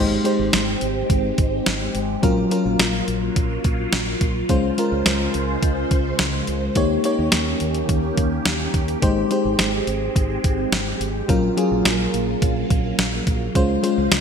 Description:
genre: 1980s-style pop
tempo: 106 BPM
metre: 4/4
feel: straight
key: Ab major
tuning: A4 = 440 Hz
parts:
  - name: FM electric piano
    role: accompaniment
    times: 0.0-14.2 s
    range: Gb3 to Db5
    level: -22 LUFS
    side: left 2 dB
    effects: chorus
  - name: phased string machine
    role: sustained chords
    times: 0.0-14.2 s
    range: Db3 to C5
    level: -26 LUFS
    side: right 1 dB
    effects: ensemble chorus, phaser
  - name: fingered electric bass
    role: bass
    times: 0.0-14.2 s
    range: Ab1 to Eb2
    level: -27 LUFS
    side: right 1 dB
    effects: none
  - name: clean 12-bit digital drum machine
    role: drums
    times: 0.3-14.2 s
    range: hi-hat, kick drum, snare drum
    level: -21 LUFS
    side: right 1 dB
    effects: gated reverb
room: moderate lush hall reverb, RT60 2.2 s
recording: bright 1980s-style digital production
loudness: -18 LUFS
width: side -7 dB against mid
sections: 0.0-14.2 A section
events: none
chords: 0.0 Abmaj7; 2.2 Gbmaj7/Bb; 4.5 Dbmaj7; 6.8 Eb7; 9.0 Abmaj7; 11.3 Gbmaj7/Bb; 13.6 Dbmaj7

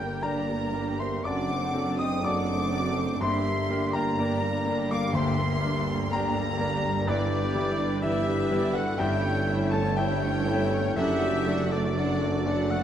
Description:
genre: classical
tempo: 61 BPM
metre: 4/4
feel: rubato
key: D major from 7.1 s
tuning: A4 = 439 Hz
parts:
  - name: clear concert grand piano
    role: melody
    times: 0.0-12.8 s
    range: D2 to Eb6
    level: -30 LUFS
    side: left 2 dB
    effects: none
  - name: warm symphonic violin section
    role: melody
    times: 0.0-12.8 s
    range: G4 to F#5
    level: -40 LUFS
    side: left 4 dB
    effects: none
  - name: clear oboe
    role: second line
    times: 0.0-12.8 s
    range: D5 to Eb6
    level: -35 LUFS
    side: equal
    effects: none
  - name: mellow hollow silver concert flute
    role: second line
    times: 0.0-12.8 s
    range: F#4 to G5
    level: -36 LUFS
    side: left 2 dB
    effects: none
  - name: rich symphonic violin section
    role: second line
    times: 0.0-12.8 s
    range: D5 to Eb6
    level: -36 LUFS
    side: left 1 dB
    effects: none
  - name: warm symphonic viola section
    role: accompaniment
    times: 0.0-12.8 s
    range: E3 to G4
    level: -35 LUFS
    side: right 2 dB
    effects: none
  - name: clear trombone section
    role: sustained chords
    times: 0.0-12.8 s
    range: F#2 to Bb3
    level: -37 LUFS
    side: right 3 dB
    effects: none
  - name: mellow French horn section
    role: sustained chords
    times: 0.0-12.8 s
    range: Bb3 to E4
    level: -34 LUFS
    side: left 3 dB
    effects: none
  - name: mellow tuba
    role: bass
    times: 0.0-12.8 s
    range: F#1 to G1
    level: -35 LUFS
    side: right 4 dB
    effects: none
  - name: warm symphonic cello section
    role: bass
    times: 0.0-12.8 s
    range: F#2 to G2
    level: -35 LUFS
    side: right 3 dB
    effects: none
  - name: warm symphonic double bass section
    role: bass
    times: 0.0-12.8 s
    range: F#1 to G1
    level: -35 LUFS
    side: right 3 dB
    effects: none
room: moderate scoring stage reverb, RT60 1.9 s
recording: none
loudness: -24 LUFS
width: side -9 dB against mid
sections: 0.0-12.8 A section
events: none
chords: 0.0 Gm; 1.2 D7/F#; 3.2 Gm; 7.1 Em7/G; 9.0 A7/G; 11.0 D/F#

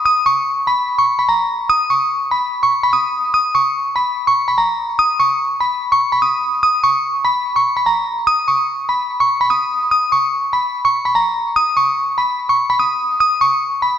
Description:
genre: hip hop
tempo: 146 BPM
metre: 4/4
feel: half-time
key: unclear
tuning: A4 = 440 Hz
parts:
  - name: glassy synth bell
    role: solo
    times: 0.0-14.0 s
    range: A#5 to D#6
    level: -14 LUFS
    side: equal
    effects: chorus, low-pass filter
room: light reverb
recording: dark, warm production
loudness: -14 LUFS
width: side -9 dB against mid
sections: 0.0-14.0 A section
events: none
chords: none

